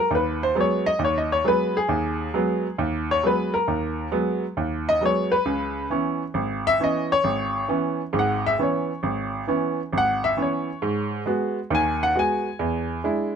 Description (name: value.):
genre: solo jazz.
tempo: 134 BPM.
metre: 4/4.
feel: swing 68% on 8ths.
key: G# minor.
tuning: A4 = 440 Hz.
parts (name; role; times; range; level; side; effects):
clear baby grand piano; solo; 0.0-13.4 s; G#1 to G#5; -21 LUFS; equal; none.
room: light reverb.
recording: close, detailed microphones.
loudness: -21 LUFS.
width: side -7 dB against mid.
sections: 0.0-13.4 A section.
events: grand piano solo 0.0-13.4.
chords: 0.0 G#m7; 5.5 C#m7; 10.8 G#m7; 12.6 E7.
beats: | 0.10 0.55 0.99 1.44 | 1.88 2.33 2.78 3.22 | 3.67 4.12 4.56 5.01 | 5.46 5.90 6.35 6.79 | 7.24 7.69 8.13 8.58 | 9.03 9.47 9.92 10.37 | 10.82 11.26 11.71 12.16 | 12.61 13.05.